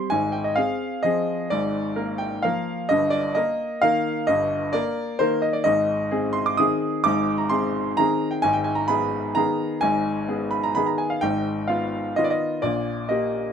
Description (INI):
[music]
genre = classical, piano waltz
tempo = 129 BPM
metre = 3/4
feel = uneven beats, rubato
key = Eb major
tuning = A4 = 440 Hz
[part]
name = bright baby grand piano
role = solo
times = 0.0-13.5 s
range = G1 to Eb6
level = -21 LUFS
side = equal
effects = none
[sound]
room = light reverb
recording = none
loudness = -21 LUFS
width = side -7 dB against mid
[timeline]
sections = 0.0-13.5 A section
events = none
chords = 0.1 Fm/Ab; 1.5 Bb7/Ab; 2.9 Eb/G; 5.7 Ab; 8.4 Abm; 11.2 Fm7b5/Ab; 12.6 Eb/Bb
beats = | 0.10 0.56 1.04 | 1.50 1.96 2.44 | 2.90 3.36 3.83 | 4.28 4.74 5.20 | 5.66 6.11 6.59 | 7.05 7.51 7.98 | 8.43 8.88 9.35 | 9.81 10.27 10.75 | 11.22 11.69 12.17 | 12.63 13.10